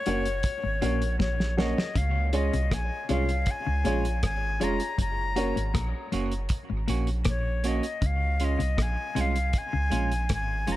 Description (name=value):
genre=dub reggae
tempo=79 BPM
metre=4/4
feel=straight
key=Db major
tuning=A4 = 440 Hz
part: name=jazz flute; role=melody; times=0.0-10.8 s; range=Db5 to Bb5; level=-32 LUFS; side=left 3 dB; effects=dub echo
part: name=semi-hollow electric guitar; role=accompaniment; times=0.1-10.8 s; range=Ab3 to Gb4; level=-34 LUFS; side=right 5 dB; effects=dub echo
part: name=clean electric guitar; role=riff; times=0.1-10.8 s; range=F2 to Db3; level=-35 LUFS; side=left 5 dB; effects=tremolo
part: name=dark upright piano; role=stabs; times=0.1-5.6 s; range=F4 to Db5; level=-34 LUFS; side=left 2 dB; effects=dub echo
part: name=soft dub sub bass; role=bass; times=0.1-10.8 s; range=F1 to Db2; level=-28 LUFS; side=equal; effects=none
part: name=cloth-damped thuddy drum kit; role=drums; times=0.1-10.8 s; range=hi-hat, kick drum, rim click, snare drum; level=-30 LUFS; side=equal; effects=none
room=light reverb, small room ambience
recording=none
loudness=-25 LUFS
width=side -15 dB against mid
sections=0.0-2.0 A section; 2.0-10.8 A section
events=drum fill 1.2-2.0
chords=0.0 Gb; 2.0 Db; 5.0 Gb; 8.0 Db